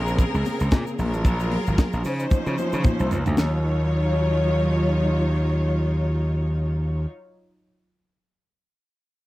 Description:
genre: disco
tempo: 113 BPM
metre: 4/4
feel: swing 56% on 16ths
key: Eb dorian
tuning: A4 = 439 Hz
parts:
  - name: clear studio string section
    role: sustained chords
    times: 0.0-7.0 s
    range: Db3 to Db5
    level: -26 LUFS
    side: equal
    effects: none
  - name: gritty slap bass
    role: bass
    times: 0.0-7.0 s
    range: Ab1 to Db3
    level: -22 LUFS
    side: equal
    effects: overdrive
  - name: tight funk drum kit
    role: drums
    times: 0.1-3.5 s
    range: hi-hat, kick drum, snare drum, toms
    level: -21 LUFS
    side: equal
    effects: none
  - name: egg shaker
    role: percussion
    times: 0.1-3.6 s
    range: none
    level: -47 LUFS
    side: right 7 dB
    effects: none
  - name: congas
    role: percussion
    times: 0.2-3.6 s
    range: none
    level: -31 LUFS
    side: left 4 dB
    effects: none
room: little or no reverb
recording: dry, close 1970s-style studio recording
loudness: -20 LUFS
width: side -18 dB against mid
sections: 0.0-3.4 A section; 3.4-7.6 B section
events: drum fill 2.3-3.4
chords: 0.0 Bbm9; 1.0 Gbmaj9; 2.0 Dbmaj9; 3.4 Ebm9

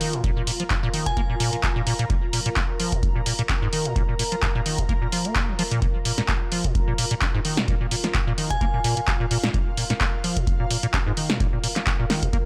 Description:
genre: acid house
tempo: 129 BPM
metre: 4/4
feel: swing 54% on 16ths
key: unclear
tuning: A4 = 440 Hz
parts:
  - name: acid bass, square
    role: riff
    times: 0.0-12.4 s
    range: Ab2 to Db4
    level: -29 LUFS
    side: equal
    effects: subtle chorus, digital delay
  - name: punchy analog drum machine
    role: drums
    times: 0.0-12.4 s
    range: handclaps, hi-hat, snare drum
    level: -28 LUFS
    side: equal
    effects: studio reverb
  - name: granular cloud pad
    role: texture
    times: 0.0-12.5 s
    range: F4 to Bb5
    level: -36 LUFS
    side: equal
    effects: built-in reverb, sidechain pumping
  - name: electronic kick drum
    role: drums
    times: 0.2-12.4 s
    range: none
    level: -27 LUFS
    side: equal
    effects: studio reverb
  - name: glassy synth bell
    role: melody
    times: 1.1-1.5, 8.5-9.0 s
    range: Ab5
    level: -33 LUFS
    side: equal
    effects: chorus, phaser, digital delay
room: digital ambience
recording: none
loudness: -23 LUFS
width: mono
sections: 0.0-12.5 A section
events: none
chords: 0.0 Bb5

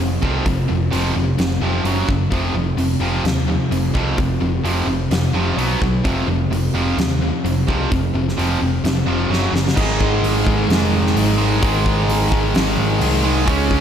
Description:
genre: hard rock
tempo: 129 BPM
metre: 4/4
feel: straight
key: unclear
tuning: A4 = 442 Hz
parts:
  - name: distorted electric guitar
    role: riff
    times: 0.0-13.8 s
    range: F2 to Db4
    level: -21 LUFS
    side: right 6 dB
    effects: overdrive
  - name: heavy high-gain guitar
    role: riff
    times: 0.0-13.8 s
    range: F2 to Db4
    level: -23 LUFS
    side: left 8 dB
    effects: distortion, slapback echo
  - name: overdriven picked electric bass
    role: bass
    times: 0.0-13.8 s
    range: F1 to Eb2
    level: -21 LUFS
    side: equal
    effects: none
  - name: huge arena drum kit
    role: drums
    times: 0.0-13.8 s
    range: crash cymbal, hi-hat, kick drum, snare drum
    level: -22 LUFS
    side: equal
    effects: none
  - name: distorted electric guitar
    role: riff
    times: 9.8-13.8 s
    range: Ab2 to Db4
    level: -24 LUFS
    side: equal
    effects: distortion
room: moderate lush hall reverb, RT60 1.8 s, small room ambience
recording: big arena sound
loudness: -16 LUFS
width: side -8 dB against mid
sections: 0.0-9.8 A section; 9.8-13.8 B section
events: drum fill 9.3-9.8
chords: 0.0 F5; 1.9 Gb5; 2.3 F5; 5.6 B5; 6.0 F5; 9.3 Gb5; 9.8 Ab

